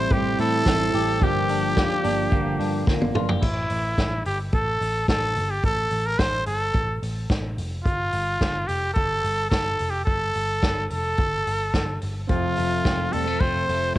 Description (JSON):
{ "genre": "jangly indie pop", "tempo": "108 BPM", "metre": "4/4", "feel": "straight", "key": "unclear", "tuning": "A4 = 442 Hz", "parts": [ { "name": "growling trumpet", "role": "melody", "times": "0.0-14.0 s", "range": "E4 to C5", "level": "-25 LUFS", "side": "equal", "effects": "none" }, { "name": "picked steel-string acoustic guitar", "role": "accompaniment", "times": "0.0-3.4, 12.3-14.0 s", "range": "F2 to E4", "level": "-28 LUFS", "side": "right 8 dB", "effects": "cassette tape" }, { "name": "soft electric-piano-like synth keys", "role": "accompaniment", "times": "0.0-3.4, 12.3-14.0 s", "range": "C4 to Bb4", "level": "-38 LUFS", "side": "right 8 dB", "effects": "none" }, { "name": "semi-hollow electric guitar", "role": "arpeggios", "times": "0.0-3.5, 12.3-14.0 s", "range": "F3 to G4", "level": "-28 LUFS", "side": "left 9 dB", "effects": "wide subtle chorus, cassette tape" }, { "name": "vintage muted picked electric bass", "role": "bass", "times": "0.0-13.9 s", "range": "E1 to A2", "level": "-29 LUFS", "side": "equal", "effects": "none" }, { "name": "vintage drum kit", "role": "drums", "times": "0.1-14.0 s", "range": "crash cymbal, hi-hat, kick drum, snare drum, toms", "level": "-26 LUFS", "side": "equal", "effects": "cassette tape" } ], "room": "light reverb", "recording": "home recording on cassette", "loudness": "-21 LUFS", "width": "side -15 dB against mid", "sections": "0.0-3.4 A section; 3.4-14.0 B section", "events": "drum fill 2.9-3.4", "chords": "0.0 Am7; 1.2 Gm7; 3.4 A5; 7.9 Gsus2; 12.3 F", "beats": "0.11 0.66 | 1.22 1.77 2.32 2.87 | 3.43 3.98 4.53 5.09 | 5.64 6.20 6.75 7.30 | 7.86 8.41 8.97 9.52 | 10.08 10.63 11.19 11.74 | 12.29 12.85 13.40 13.96" }